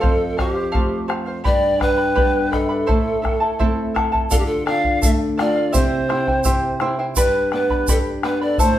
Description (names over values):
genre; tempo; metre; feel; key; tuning
andean folk, Andean ensemble; 84 BPM; 2/4; straight; unclear; A4 = 441 Hz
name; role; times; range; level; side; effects
breathy bright pan flute; melody; 0.0-8.8 s; G4 to F5; -21 LUFS; right 1 dB; none
mellow hollow large quena; second line; 0.0-8.8 s; D4 to G5; -31 LUFS; left 3 dB; none
charango; accompaniment; 0.0-8.8 s; E4 to B5; -24 LUFS; right 1 dB; none
flamenco guitar; accompaniment; 0.0-8.8 s; F2 to G4; -24 LUFS; equal; none
bombo; percussion; 0.0-8.8 s; none; -22 LUFS; left 1 dB; none
tube shaker; percussion; 4.3-8.8 s; none; -27 LUFS; right 4 dB; none
room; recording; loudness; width
wet large studio reverb, RT60 0.9 s; band playing live in one room; -16 LUFS; side -12 dB against mid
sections
0.0-4.3 A section; 4.3-8.8 B section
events
none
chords
0.0 F; 1.5 G; 2.9 Am; 4.3 Dm; 5.7 C; 7.2 G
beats
| 0.02 0.74 | 1.45 2.17 | 2.88 3.60 | 4.32 5.03 | 5.74 6.46 | 7.17 7.88 | 8.60